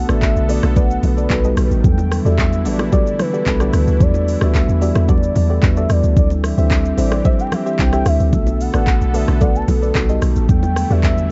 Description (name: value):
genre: amapiano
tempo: 111 BPM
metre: 4/4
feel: straight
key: E minor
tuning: A4 = 440 Hz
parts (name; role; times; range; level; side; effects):
- warm velvety synth lead; melody; 0.0-11.3 s; A4 to A5; -27 LUFS; equal; chorus, tape echo
- mellow tine electric piano; accompaniment; 0.0-11.3 s; F#3 to C5; -24 LUFS; equal; none
- warm analog pad; sustained chords; 0.0-11.3 s; D3 to A4; -30 LUFS; equal; chorus, sidechain pumping
- deep log drum bass; bass; 0.0-11.3 s; A1 to E2; -19 LUFS; equal; none
- soft round pluck; stabs; 0.1-11.0 s; F#4 to E5; -29 LUFS; equal; chorus, tape echo
- afro-pop drum kit; drums; 0.1-11.3 s; handclaps, hi-hat, kick drum, rim click, shaker; -20 LUFS; equal; none
- bongos and congas; percussion; 0.2-11.2 s; none; -28 LUFS; equal; none
room: digital ambience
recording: dark, warm production, vinyl crackle, nothing above 7.7 kHz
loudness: -16 LUFS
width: mono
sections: 0.0-11.3 A section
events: none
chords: 0.0 Bm7; 1.3 B7b13; 1.8 Em11; 6.2 D9sus4; 8.3 Bm7; 9.9 B7b13; 10.5 Em11